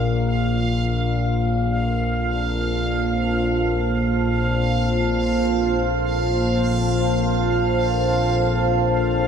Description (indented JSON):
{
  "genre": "dark ambient drone",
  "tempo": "free time",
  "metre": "none",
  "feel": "none",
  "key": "unclear",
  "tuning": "A4 = 441 Hz",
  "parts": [
    { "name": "deep dark ambient pad", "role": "sustained chords", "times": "0.0-9.3 s", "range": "F4 to A5", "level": "-23 LUFS", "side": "right 1 dB", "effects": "chorus, built-in reverb" },
    { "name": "analog drone", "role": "drone", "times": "0.0-9.3 s", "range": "Bb1 to Bb2", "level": "-21 LUFS", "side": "left 1 dB", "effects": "chorus" },
    { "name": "bubbling stepped-filter texture", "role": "texture", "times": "0.0-9.3 s", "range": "F5", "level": "-28 LUFS", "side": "right 3 dB", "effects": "chorus, built-in reverb" }
  ],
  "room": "wet cathedral reverb, RT60 6.4 s",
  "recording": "none",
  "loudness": "-18 LUFS",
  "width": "side -7 dB against mid",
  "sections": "0.0-9.3 A section",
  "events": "none",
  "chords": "0.0 F6"
}